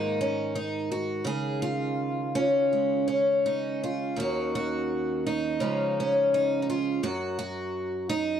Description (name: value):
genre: folk, solo fingerstyle acoustic guitar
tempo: 84 BPM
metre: 4/4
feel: rubato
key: unclear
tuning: A4 = 440 Hz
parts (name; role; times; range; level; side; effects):
- picked twelve-string acoustic guitar; solo; 0.0-8.4 s; Eb2 to Ab4; -25 LUFS; equal; none
room: small room ambience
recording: dry, close 1970s-style studio recording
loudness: -25 LUFS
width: side -8 dB against mid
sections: 0.0-8.4 A section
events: none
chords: 0.0 Absus2; 1.3 Dbadd9; 4.2 Ebm7; 5.6 Db; 7.0 N.C.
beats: 0.55 | 1.26 1.98 2.71 3.44 | 4.18 4.90 5.61 6.33 | 7.04 7.75